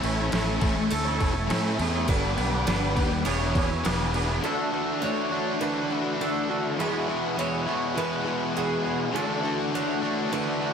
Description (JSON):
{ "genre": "rock, shoegaze and dream pop", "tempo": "102 BPM", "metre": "4/4", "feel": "straight", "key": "unclear", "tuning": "A4 = 439 Hz", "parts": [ { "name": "phased analog pad", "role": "sustained chords", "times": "0.0-4.4 s", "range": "A4 to D6", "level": "-36 LUFS", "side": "right 1 dB", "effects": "phaser, chorus" }, { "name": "biting overdriven guitar", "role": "riff", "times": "0.0-10.7 s", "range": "D3 to C#5", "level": "-30 LUFS", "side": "left 10 dB", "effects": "ensemble chorus" }, { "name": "distorted electric guitar", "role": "riff", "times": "0.0-10.7 s", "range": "E2 to D4", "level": "-32 LUFS", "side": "right 1 dB", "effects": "overdrive" }, { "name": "twangy electric guitar", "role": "riff", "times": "0.0-10.7 s", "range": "D3 to G#4", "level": "-30 LUFS", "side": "right 9 dB", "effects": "reverse reverb" }, { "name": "growling fingered electric bass", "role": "bass", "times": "0.0-4.4 s", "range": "E1 to A2", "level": "-28 LUFS", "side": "equal", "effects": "overdrive" }, { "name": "detuned 8-bit digital drum machine", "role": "drums", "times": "0.0-4.3 s", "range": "crash cymbal, kick drum, snare drum", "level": "-30 LUFS", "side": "equal", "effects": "overdrive" }, { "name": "picked twelve-string acoustic guitar", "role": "arpeggios", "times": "0.9-10.7 s", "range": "G#4 to C#5", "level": "-33 LUFS", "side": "equal", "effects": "lush chorus, digital delay" } ], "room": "light reverb, digital ambience", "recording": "none", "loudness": "-24 LUFS", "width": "side -7 dB against mid", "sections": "0.0-4.4 A section; 4.4-10.7 B section", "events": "none", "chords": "0.0 Amaj7; 2.1 Gmaj7; 3.3 E7; 4.4 Dadd9; 6.8 Eadd9; 9.1 Dadd9" }